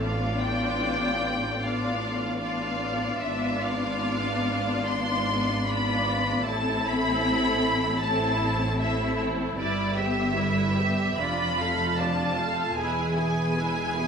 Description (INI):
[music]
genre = classical, slow romantic movement for string orchestra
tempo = 76 BPM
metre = 4/4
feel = rubato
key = A minor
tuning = A4 = 439 Hz
[part]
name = rich symphonic violin section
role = melody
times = 0.0-14.1 s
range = D5 to C6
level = -29 LUFS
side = equal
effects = none
[part]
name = warm symphonic violin section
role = second line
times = 0.0-14.1 s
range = E4 to F5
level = -30 LUFS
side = left 1 dB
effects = none
[part]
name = rich studio viola section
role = accompaniment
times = 0.0-14.1 s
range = F3 to G#4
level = -30 LUFS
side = left 1 dB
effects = none
[part]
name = rich symphonic cello section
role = bass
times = 0.0-14.1 s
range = E2 to A2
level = -32 LUFS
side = right 1 dB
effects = none
[part]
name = warm symphonic double bass section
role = bass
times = 0.0-14.1 s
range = E1 to A1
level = -33 LUFS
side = right 1 dB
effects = none
[sound]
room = wet stone room reverb, RT60 1.0 s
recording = minimal, uncompressed stereo recording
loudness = -24 LUFS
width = side -6 dB against mid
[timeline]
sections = 0.0-14.1 A section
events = none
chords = 0.0 Bm7b5/A; 3.2 G#dim7; 6.5 Am; 9.6 Em/G; 11.2 Dm/F; 12.8 E